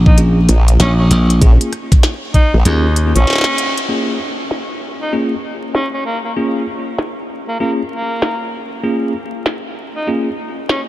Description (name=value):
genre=glitch hop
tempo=97 BPM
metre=4/4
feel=swing 63% on 16ths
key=Bb minor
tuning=A4 = 435 Hz
part: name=glassy slap bass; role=bass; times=0.0-3.1 s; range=Bb1 to Eb2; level=-11 LUFS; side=equal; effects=tube saturation
part: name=warm tenor saxophone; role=melody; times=0.1-10.8 s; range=Bb3 to Eb4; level=-22 LUFS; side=equal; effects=ping-pong delay
part: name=electronic kick drum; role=drums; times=0.1-2.5 s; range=none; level=-9 LUFS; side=equal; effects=overdrive
part: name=bell-like tine electric piano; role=stabs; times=0.2-10.3 s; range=Bb3 to Ab4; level=-22 LUFS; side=equal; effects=medium stereo tremolo, sidechain pumping, low-pass filter, ping-pong delay
part: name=glitchy drum kit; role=drums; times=0.2-10.8 s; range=crash cymbal, hi-hat, rim click, snare drum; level=-22 LUFS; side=equal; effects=low-pass filter on hats, low-pass filter on snare, low-pass filter on cymbals
part: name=formant-sweep wobble bass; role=bass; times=0.5-3.3 s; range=Bb1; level=-10 LUFS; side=equal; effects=chorus, tube saturation
room=light reverb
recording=vinyl crackle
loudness=-13 LUFS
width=side -15 dB against mid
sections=0.0-3.9 A section; 3.9-10.9 B section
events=kick drops out 2.7-3.9; band accent 3.4-3.7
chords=0.0 Bbm7